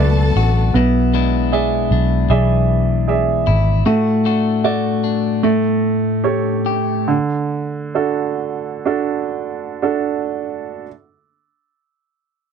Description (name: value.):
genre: pop.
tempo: 56-77 BPM.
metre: 4/4.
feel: straight.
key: D major.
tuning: A4 = 438 Hz.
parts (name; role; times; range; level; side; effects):
warm studio violin section; second line; 0.0-0.7 s; A4 to A5; -25 LUFS; left 4 dB; none.
clear baby grand piano; accompaniment; 0.0-10.9 s; D3 to E5; -18 LUFS; right 7 dB; none.
warm studio string section; sustained chords; 0.0-0.7 s; A3 to F#4; -30 LUFS; left 3 dB; none.
clean electric guitar; arpeggios; 0.0-7.2 s; A2 to G4; -20 LUFS; left 14 dB; none.
vintage muted fingered electric bass; bass; 0.0-3.8 s; G#1 to C#2; -16 LUFS; equal; none.
room: light reverb.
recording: dry, close 1970s-style studio recording.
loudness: -15 LUFS.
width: side -7 dB against mid.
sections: 0.0-10.9 A section.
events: slowing down 3.9-10.9.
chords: 0.0 Bm7; 0.7 E7/B; 3.9 D/A; 5.4 A7; 7.1 D.